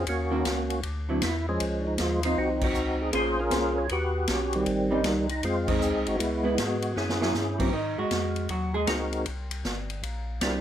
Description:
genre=soul jazz organ trio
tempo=157 BPM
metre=4/4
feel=swing 65% on 8ths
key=Ab mixolydian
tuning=A4 = 440 Hz
part: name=percussive tonewheel organ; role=melody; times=0.0-10.6 s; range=Eb3 to Db5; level=-27 LUFS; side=equal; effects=slow rotary speaker, chorus vibrato
part: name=tonewheel organ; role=bass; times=0.0-10.6 s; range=G1 to Ab2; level=-32 LUFS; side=equal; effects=overdrive, slow rotary speaker
part: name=swinging big-band drum kit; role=drums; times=0.1-10.5 s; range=crash cymbal, hi-hat, kick drum, ride cymbal, snare drum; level=-32 LUFS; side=left 1 dB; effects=none
part: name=vintage hollow-body jazz guitar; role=accompaniment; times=0.3-8.9 s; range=D3 to C5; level=-28 LUFS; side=right 1 dB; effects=none
room=moderate studio ambience, RT60 0.5 s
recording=none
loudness=-25 LUFS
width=side -10 dB against mid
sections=0.0-7.7 A section; 7.7-10.6 B section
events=band accent 2.6, 5.6; drum fill 7.0-7.3; hollow-body jazz guitar solo 7.7-10.6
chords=0.1 Ebm7; 0.8 D9; 1.6 Dbmaj9; 3.1 Bbm9; 3.9 Ebaug; 4.7 Abmaj7; 5.4 Fm7; 6.2 Dbm7; 7.0 Gb9; 7.7 Ab9; 9.3 C7

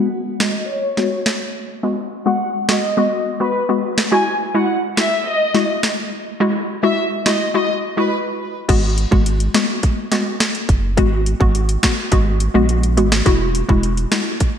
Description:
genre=dancehall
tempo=105 BPM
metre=4/4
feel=straight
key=G# minor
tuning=A4 = 439 Hz
part: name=warm symphonic violin section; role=melody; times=0.0-8.1 s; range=B4 to G#5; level=-21 LUFS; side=equal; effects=low-pass filter, digital delay
part: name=hollow square pluck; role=accompaniment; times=0.0-14.4 s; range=G#3 to F#4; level=-19 LUFS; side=left 2 dB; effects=chorus, sidechain pumping, low-pass filter
part: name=island pop drum kit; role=drums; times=0.4-14.5 s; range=crash cymbal, hi-hat, kick drum, snare drum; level=-19 LUFS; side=equal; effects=none
part: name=saturated sub bass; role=bass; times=8.7-14.1 s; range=E1 to A#1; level=-18 LUFS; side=equal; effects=none
room=moderate lush hall reverb, RT60 1.8 s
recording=bright 1980s-style digital production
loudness=-15 LUFS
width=side -8 dB against mid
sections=0.0-8.7 A section; 8.7-14.6 B section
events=filter sweep 0.0-8.7; break 8.1-8.7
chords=0.0 G#m7; 4.1 Eadd9; 8.7 G#m7; 13.3 Eadd9

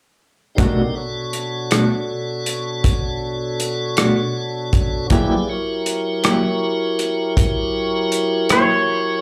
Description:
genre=slow blues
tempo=53 BPM (dotted quarters)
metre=12/8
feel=straight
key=B minor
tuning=A4 = 440 Hz
part: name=mellow electric guitar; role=accompaniment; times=0.6-8.7 s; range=B2 to G4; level=-21 LUFS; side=equal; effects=tremolo, slapback echo
part: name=tonewheel organ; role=sustained chords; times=0.6-9.2 s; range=B2 to D5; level=-24 LUFS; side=equal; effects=slow rotary speaker
part: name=warm soul drum kit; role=drums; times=0.6-8.7 s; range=hi-hat, kick drum, rim click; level=-21 LUFS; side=equal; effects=none
part: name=electric guitar through a small old amp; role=melody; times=8.5-9.2 s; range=C#5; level=-19 LUFS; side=equal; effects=slapback echo
room=light reverb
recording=live gig heard through the venue's PA, club ambience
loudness=-20 LUFS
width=mono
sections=0.6-9.2 A section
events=none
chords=0.6 Bm7; 5.1 F#7b9

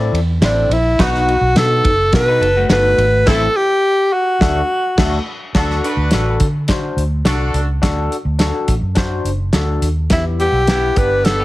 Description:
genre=uptempo 1960s-style soul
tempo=105 BPM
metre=4/4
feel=straight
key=unclear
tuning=A4 = 440 Hz
part: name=overdriven tine electric piano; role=accompaniment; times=0.0-11.4 s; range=A3 to D5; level=-23 LUFS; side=left 4 dB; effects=phaser, plate reverb
part: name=vintage muted fingered electric bass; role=bass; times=0.0-11.4 s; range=F#1 to D3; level=-18 LUFS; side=equal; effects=none
part: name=warm soul drum kit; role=drums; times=0.1-11.4 s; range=crash cymbal, hi-hat, kick drum, ride cymbal, snare drum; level=-18 LUFS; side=equal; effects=none
part: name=breathy tenor saxophone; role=melody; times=0.4-5.3, 10.1-11.4 s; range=D4 to B4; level=-15 LUFS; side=equal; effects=none
part: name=warm horn section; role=second line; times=1.0-11.4 s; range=G3 to B4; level=-24 LUFS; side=right 1 dB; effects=plate reverb
part: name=electric guitar through a small old amp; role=riff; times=2.3-3.2, 11.4 s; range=A3 to B4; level=-23 LUFS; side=left 4 dB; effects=tube saturation
room=light reverb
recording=heavily compressed radio sound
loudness=-13 LUFS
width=side -18 dB against mid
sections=0.0-5.5 A section; 5.5-10.1 B section; 10.1-11.4 C section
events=band accent 3.3-5.5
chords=0.0 Am; 1.0 B; 3.3 Am; 4.4 D; 10.1 Em

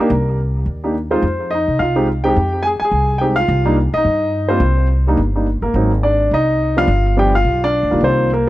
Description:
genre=jazz piano trio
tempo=212 BPM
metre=4/4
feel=swing 59% on 8ths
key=C minor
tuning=A4 = 441 Hz
part: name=warm grand piano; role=melody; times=0.0-8.5 s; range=Eb3 to Ab5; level=-16 LUFS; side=equal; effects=tape echo
part: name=upright bass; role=bass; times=0.1-8.5 s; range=G1 to C3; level=-18 LUFS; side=equal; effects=none
room=small room ambience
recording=dry, close 1970s-style studio recording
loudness=-14 LUFS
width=side -16 dB against mid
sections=0.0-8.5 A section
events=none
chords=0.0 Cm7; 1.2 Fm7; 3.5 Cm7; 5.8 Ab; 6.9 G7

